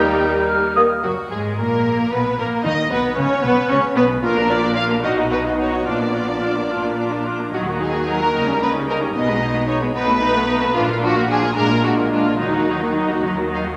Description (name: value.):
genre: quick classical-period movement for symphony orchestra.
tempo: 74 BPM (dotted quarters).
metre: 6/8.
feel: rubato.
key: Eb minor.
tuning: A4 = 440 Hz.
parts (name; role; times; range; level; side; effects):
rich chamber violin section; melody; 0.0-13.6 s; Gb4 to D6; -37 LUFS; equal; none.
rich symphonic violin section; second line; 0.0-13.2 s; Eb4 to F5; -24 LUFS; equal; none.
silver concert flute; second line; 0.0-0.8 s; Eb6 to G6; -25 LUFS; equal; none.
warm chamber viola section; accompaniment; 0.0-13.8 s; F3 to Bb4; -23 LUFS; equal; none.
mellow French horn section; sustained chords; 0.0-13.8 s; Gb3 to F4; -29 LUFS; equal; none.
dark trumpet section; stabs; 0.0-0.8 s; Bb4; -29 LUFS; equal; none.
rich chamber cello section; bass; 0.0-13.8 s; Gb2 to G3; -28 LUFS; equal; none.
rich chamber double bass section; bass; 0.0-13.8 s; Gb1 to Eb2; -34 LUFS; equal; none.
timpani; percussion; 0.0-0.1, 2.7-5.0, 12.4-13.2 s; Bb2 to Eb3; -39 LUFS; equal; none.
mellow cor anglais; second line; 0.8-0.9 s; Eb5; -26 LUFS; equal; none.
dark bassoon; accompaniment; 0.8-0.9 s; Bb3; -26 LUFS; equal; none.
room: wet concert hall reverb, RT60 1.9 s.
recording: none.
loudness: -19 LUFS.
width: mono.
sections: 0.0-1.0 A section; 1.0-13.8 A section.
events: none.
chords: 0.0 Eb; 1.0 Gbadd9; 1.8 N.C.; 2.6 Badd9; 3.4 Bsus2; 4.2 Bb; 5.0 B; 5.9 Bb; 7.5 Ebm; 8.3 Eb7/Db; 9.1 Abm/Cb; 9.9 B7; 10.7 Bb; 11.6 Bb7; 12.4 Ebm.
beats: 0.20 | 1.04 1.85 | 2.65 3.44 | 4.23 5.04 | 5.86 6.69 | 7.52 8.34 | 9.14 9.95 | 10.75 11.56 | 12.39 13.25.